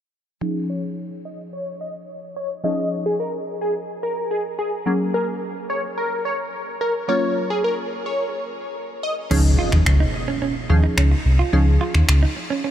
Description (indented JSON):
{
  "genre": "dance-pop",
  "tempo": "108 BPM",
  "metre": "4/4",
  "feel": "straight",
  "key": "Db major",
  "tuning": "A4 = 441 Hz",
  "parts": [
    { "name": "glassy wavetable pluck", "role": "accompaniment", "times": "0.4-12.2 s", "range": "F3 to Ab4", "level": "-26 LUFS", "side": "left 1 dB", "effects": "chorus, low-pass filter" },
    { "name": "plucky unison lead", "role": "melody", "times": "0.7-9.2 s", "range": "Ab4 to Eb5", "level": "-24 LUFS", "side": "equal", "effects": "low-pass filter, diffuse ambient delay" },
    { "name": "direct-recorded clean electric guitar", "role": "riff", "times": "9.3-12.7 s", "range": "Db4 to F4", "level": "-26 LUFS", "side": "right 7 dB", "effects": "lush chorus" },
    { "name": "sub bass with octave", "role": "bass", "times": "9.3-12.3 s", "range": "C2 to Eb2", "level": "-15 LUFS", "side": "equal", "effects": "none" },
    { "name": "house drum kit", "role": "drums", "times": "9.3-12.2 s", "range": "crash cymbal, finger snaps", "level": "-27 LUFS", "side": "left 1 dB", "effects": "overdrive" },
    { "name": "impact", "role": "sound effects", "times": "9.4-11.5 s", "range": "none", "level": "-30 LUFS", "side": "equal", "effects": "none" }
  ],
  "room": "moderate huge ambient reverb, RT60 6.9 s",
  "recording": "dreamy mix soaked in reverb",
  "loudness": "-19 LUFS",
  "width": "side -11 dB against mid",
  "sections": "0.4-9.3 A section; 9.3-12.7 B section",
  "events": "filter sweep 0.4-9.3; impact 9.3-11.5",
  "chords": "0.4 Dbadd9; 4.9 Gbadd9; 9.3 Dbadd9"
}